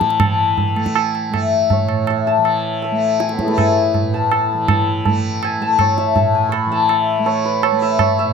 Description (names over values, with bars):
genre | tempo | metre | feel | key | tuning
indian classical, Hindustani | 162 BPM | 3/4 | straight | A raga hamsadhwani | A4 = 440 Hz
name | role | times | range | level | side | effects
santur | melody | 0.0-8.3 s | A3 to C#6 | -17 LUFS | left 5 dB | none
tanpura | drone | 0.0-8.3 s | A2 to A3 | -23 LUFS | right 3 dB | none
tabla | percussion | 0.0-8.1 s | none | -20 LUFS | right 6 dB | none
room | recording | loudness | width
light reverb | close, detailed microphones | -14 LUFS | side -6 dB against mid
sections
0.2-8.3 A section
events
speeding up 0.0-8.3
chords
none